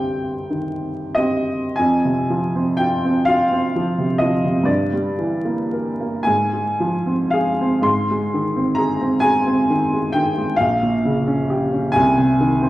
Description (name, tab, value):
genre	classical, romantic nocturne for solo piano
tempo	29-45 BPM (dotted quarters)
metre	6/8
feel	rubato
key	F minor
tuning	A4 = 441 Hz
part	clear upright piano	solo	0.0-12.7 s	Bb1 to C6	-17 LUFS	equal	none
room	wet recital hall reverb, RT60 1.5 s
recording	heard from further back in the room, vinyl crackle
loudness	-17 LUFS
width	side -16 dB against mid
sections	0.0-1.8 A section; 1.8-12.7 B section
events	none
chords	0.0 Cm; 1.8 Fm; 4.7 Edim/G; 6.3 Fm/Ab; 7.9 Ab; 10.6 Gdim/Bb; 12.0 Ab/C